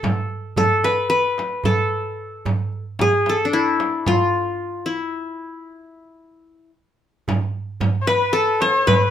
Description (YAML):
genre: Turkish makam ensemble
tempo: 224 BPM (eighths)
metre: 9/8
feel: straight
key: unclear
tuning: A4 = 438 Hz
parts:
  - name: qanun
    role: melody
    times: 0.0-9.1 s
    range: D4 to C#5-40c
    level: -19 LUFS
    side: left 2 dB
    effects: none
  - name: darbuka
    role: percussion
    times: 0.0-9.1 s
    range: none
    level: -24 LUFS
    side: right 4 dB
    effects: none
  - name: frame drum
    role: percussion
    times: 0.0-9.0 s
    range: none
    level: -25 LUFS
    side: left 1 dB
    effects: none
  - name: clear kamancheh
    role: second line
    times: 8.0-9.1 s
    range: A4 to C#5-39c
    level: -22 LUFS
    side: left 5 dB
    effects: none
room: moderate studio reverb, RT60 0.6 s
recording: minimal, uncompressed stereo recording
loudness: -18 LUFS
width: side -10 dB against mid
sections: 0.0-7.3 A section; 7.3-9.1 B section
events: break 4.9-7.3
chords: none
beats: | 0.04 0.31 0.58 0.85 1.12 1.38 1.65 1.92 2.19 | 2.46 2.72 2.99 3.26 3.53 3.80 4.06 4.33 4.60 | 4.87 5.13 5.40 5.67 5.94 6.21 6.47 6.74 7.01 | 7.28 7.54 7.81 8.08 8.35 8.61 8.88